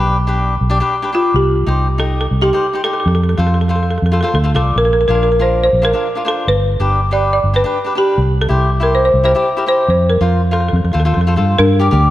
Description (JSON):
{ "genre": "calypso", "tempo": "141 BPM", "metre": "4/4", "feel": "straight", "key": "unclear", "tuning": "A4 = 440 Hz", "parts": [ { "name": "folk marimba with hard mallets", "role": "melody", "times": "0.0-12.1 s", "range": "D4 to D5", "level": "-16 LUFS", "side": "equal", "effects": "none" }, { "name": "cavaquinho", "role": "accompaniment", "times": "0.0-12.1 s", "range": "D4 to Eb5", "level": "-19 LUFS", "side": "left 2 dB", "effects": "none" }, { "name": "vintage muted fingered electric bass", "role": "bass", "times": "0.0-12.1 s", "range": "G1 to G2", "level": "-15 LUFS", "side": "equal", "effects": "none" } ], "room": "moderate scoring stage reverb, RT60 1.9 s", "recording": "none", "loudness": "-12 LUFS", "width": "side -14 dB against mid", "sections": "0.0-11.6 A section", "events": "none", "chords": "0.0 G/B; 1.4 Cm; 3.1 F; 4.8 Bb; 6.5 G; 8.2 C; 9.9 Fsus4; 10.7 F7; 11.6 Gm", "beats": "0.07 0.50 0.92 | 1.35 1.78 2.21 2.63 | 3.06 3.49 3.91 4.34 | 4.77 5.19 5.62 6.05 | 6.47 6.90 7.33 7.75 | 8.18 8.61 9.03 9.46 | 9.89 10.31 10.74 11.16 | 11.59 12.02" }